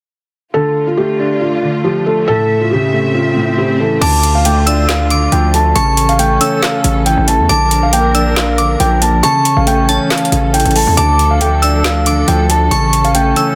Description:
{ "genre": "hip hop, trap", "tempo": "138 BPM", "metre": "4/4", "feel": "half-time", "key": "D harmonic minor", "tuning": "A4 = 439 Hz", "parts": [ { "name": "felt-muted upright piano", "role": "melody", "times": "0.5-13.6 s", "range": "F4 to A5", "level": "-18 LUFS", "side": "equal", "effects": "low-pass filter, digital delay" }, { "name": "dark grand piano", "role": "accompaniment", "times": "0.5-13.6 s", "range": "A2 to D4", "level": "-20 LUFS", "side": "equal", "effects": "low-pass filter" }, { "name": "warm studio string section", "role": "sustained chords", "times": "0.5-13.6 s", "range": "C#3 to E5", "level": "-24 LUFS", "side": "equal", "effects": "none" }, { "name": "swell", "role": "sound effects", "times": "2.7-4.0 s", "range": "none", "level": "-25 LUFS", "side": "equal", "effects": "none" }, { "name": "glassy synth bell", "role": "second line", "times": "4.0-13.6 s", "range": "A5 to E6", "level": "-21 LUFS", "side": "equal", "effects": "chorus, phaser, digital delay" }, { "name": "distorted 808-style bass", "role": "bass", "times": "4.0-13.3 s", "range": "A1 to E2", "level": "-17 LUFS", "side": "equal", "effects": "distortion" }, { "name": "trap drum kit", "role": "drums", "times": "4.0-13.5 s", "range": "crash cymbal, handclaps, hi-hat, snare drum", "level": "-20 LUFS", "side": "equal", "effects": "none" } ], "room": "studio ambience", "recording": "dense, heavily limited modern master", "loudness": "-13 LUFS", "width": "mono", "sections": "0.5-4.0 A section; 4.0-13.6 B section", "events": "swell 2.7-4.0", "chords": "0.5 Dm; 2.3 A; 4.0 Dm; 5.8 A; 7.5 Bb; 9.2 A; 11.0 Dm; 12.7 A", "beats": "| 0.54 0.97 1.41 1.84 | 2.28 2.71 3.15 3.58 | 4.02 4.45 4.89 5.32 | 5.76 6.19 6.62 7.06 | 7.50 7.93 8.37 8.80 | 9.23 9.67 10.10 10.54 | 10.97 11.41 11.84 12.28 | 12.71 13.15" }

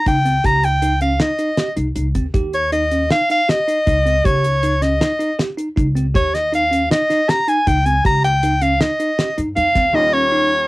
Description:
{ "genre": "progressive instrumental, band music in an uneven meter", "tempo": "158 BPM", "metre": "5/4", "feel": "straight", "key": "Eb mixolydian", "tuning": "A4 = 436 Hz", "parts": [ { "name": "clear soprano saxophone", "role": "melody", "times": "0.0-10.7 s", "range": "Db5 to Bb5", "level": "-16 LUFS", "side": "equal", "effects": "cassette tape" }, { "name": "bell-like tine electric piano", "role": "arpeggios", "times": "0.1-10.5 s", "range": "C4 to G4", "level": "-23 LUFS", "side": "right 2 dB", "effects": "cassette tape, tape echo" }, { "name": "upright bass", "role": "bass", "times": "0.1-9.9 s", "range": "C2 to G2", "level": "-20 LUFS", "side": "equal", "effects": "none" }, { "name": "damped 70s drum kit", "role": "drums", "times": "0.1-9.8 s", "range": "hi-hat, kick drum, snare drum", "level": "-20 LUFS", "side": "equal", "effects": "none" }, { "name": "clear grand piano", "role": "accompaniment", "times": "9.9-10.7 s", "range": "Eb2 to F4", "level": "-24 LUFS", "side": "left 2 dB", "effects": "cassette tape" } ], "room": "light reverb", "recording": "home recording on cassette", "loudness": "-14 LUFS", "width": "side -20 dB against mid", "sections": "0.0-9.9 A section", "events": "none", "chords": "0.0 Eb7", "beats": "0.06 | 0.44 0.82 1.20 1.58 1.96 | 2.35 2.73 3.10 3.49 3.87 | 4.25 4.63 5.01 5.39 5.77 | 6.15 6.53 6.91 7.29 7.67 | 8.04 8.43 8.80 9.18 9.56 | 9.94 10.32" }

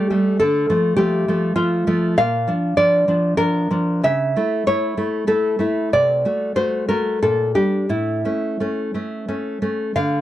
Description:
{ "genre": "romantic piece for solo classical guitar", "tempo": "84-104 BPM", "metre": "3/4", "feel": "rubato", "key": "unclear", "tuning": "A4 = 436 Hz", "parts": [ { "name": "nylon-string guitar", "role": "solo", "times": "0.0-10.2 s", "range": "A2 to F5", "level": "-17 LUFS", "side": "equal", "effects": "none" } ], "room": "light reverb", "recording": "dry, close 1970s-style studio recording", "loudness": "-17 LUFS", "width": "side -13 dB against mid", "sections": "0.0-10.0 A section", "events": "none", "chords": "0.4 Dm; 2.2 Bb; 4.0 A/C#; 5.9 D7/C; 7.2 Gm/Bb; 7.9 A", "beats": "| 0.39 0.97 1.55 | 2.18 2.78 3.39 | 4.05 4.67 5.28 | 5.93 6.57 7.21 | 7.89 8.60 9.29 | 9.97" }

